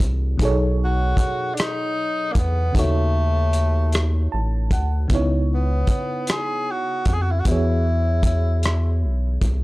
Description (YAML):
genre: slow six-eight R&B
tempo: 51 BPM (dotted quarters)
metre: 6/8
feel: straight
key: C# minor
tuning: A4 = 444 Hz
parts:
  - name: FM electric piano with auto-pan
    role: accompaniment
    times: 0.0-9.6 s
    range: B2 to A5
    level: -27 LUFS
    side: right 1 dB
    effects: none
  - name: rubbery square bass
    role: bass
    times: 0.0-9.6 s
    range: A1 to E#2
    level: -20 LUFS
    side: equal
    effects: transformer saturation
  - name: cloth-damped thuddy drum kit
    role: drums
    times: 0.0-9.6 s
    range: hi-hat, kick drum, rim click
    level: -21 LUFS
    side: equal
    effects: none
  - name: warm tenor saxophone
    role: melody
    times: 0.8-9.0 s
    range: A3 to G#4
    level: -25 LUFS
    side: equal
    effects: none
room: little or no reverb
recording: dry, gritty hardware recording, transformer saturation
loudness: -18 LUFS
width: side -20 dB against mid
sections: 0.0-9.6 A section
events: FM electric piano fill 3.9-5.1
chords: 0.4 B13; 2.8 D#m7b5; 5.1 C#m9; 7.5 E69